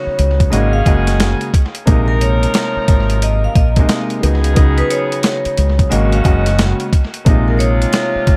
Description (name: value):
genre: hip hop, boom-bap hip-hop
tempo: 89 BPM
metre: 4/4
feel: swing 63% on 16ths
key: Bb minor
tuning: A4 = 438 Hz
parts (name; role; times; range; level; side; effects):
- vibraphone with medium hard mallets; melody; 0.0-8.4 s; Bb4 to F5; -24 LUFS; equal; dub echo
- warm upright piano; accompaniment; 0.0-8.4 s; C3 to Gb4; -22 LUFS; equal; cassette tape
- clear saxophone section; stabs; 0.0-8.4 s; C3 to Bb4; -26 LUFS; equal; dub echo
- deep dub fingered electric bass; bass; 0.1-8.4 s; Gb1 to Db2; -17 LUFS; equal; none
- boom bap sampler-style drum kit; drums; 0.2-8.4 s; hi-hat, kick drum, snare drum; -17 LUFS; equal; none
room: small room ambience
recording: echo-heavy mix, vinyl crackle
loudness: -14 LUFS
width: mono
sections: 0.0-8.4 A section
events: none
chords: 0.0 Db9sus4; 0.5 Ab9sus4; 1.9 Bb9sus4; 4.2 Db9sus4; 5.9 Ab9sus4; 7.3 Bb9sus4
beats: 0.52 1.20 | 1.87 2.54 3.22 3.89 | 4.57 5.24 5.92 6.59 | 7.26 7.94